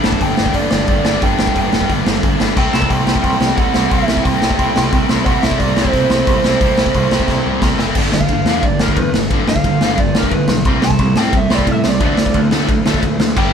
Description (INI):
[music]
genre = punk rock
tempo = 178 BPM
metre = 4/4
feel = straight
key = G major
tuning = A4 = 439 Hz
[part]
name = lead guitar through a small cranked amp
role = melody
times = 0.0-13.5 s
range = Bb4 to A5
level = -20 LUFS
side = right 2 dB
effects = overdrive
[part]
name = distorted electric guitar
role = riff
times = 0.0-13.5 s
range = G2 to E4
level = -20 LUFS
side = left 6 dB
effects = overdrive
[part]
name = distorted electric guitar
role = riff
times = 0.0-13.5 s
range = G2 to D4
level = -21 LUFS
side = right 7 dB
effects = distortion
[part]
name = growling picked electric bass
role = bass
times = 0.0-13.5 s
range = F#1 to A2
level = -21 LUFS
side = equal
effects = overdrive
[part]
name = raw garage drum kit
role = drums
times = 0.0-13.4 s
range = crash cymbal, hi-hat, kick drum, ride cymbal, snare drum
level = -16 LUFS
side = equal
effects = none
[part]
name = heavy high-gain guitar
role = riff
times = 13.4-13.5 s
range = G2 to G3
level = -22 LUFS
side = left 1 dB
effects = distortion
[sound]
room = light reverb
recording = band playing live in one room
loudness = -12 LUFS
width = side -7 dB against mid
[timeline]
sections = 0.0-8.0 A section; 8.0-13.5 B section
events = drum fill 7.3-8.0; lead electric guitar solo 8.0-13.5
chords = 0.0 G; 2.6 C; 8.0 G5; 10.7 C5; 12.0 D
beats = 0.21 0.55 0.89 | 1.22 1.56 1.90 2.23 | 2.57 2.91 3.24 3.58 | 3.92 4.25 4.59 4.93 | 5.26 5.60 5.94 6.27 | 6.61 6.95 7.28 7.62 | 7.96 8.30 8.63 8.97 | 9.31 9.64 9.98 10.32 | 10.66 11.00 11.33 11.67 | 12.01 12.35 12.69 13.02 | 13.36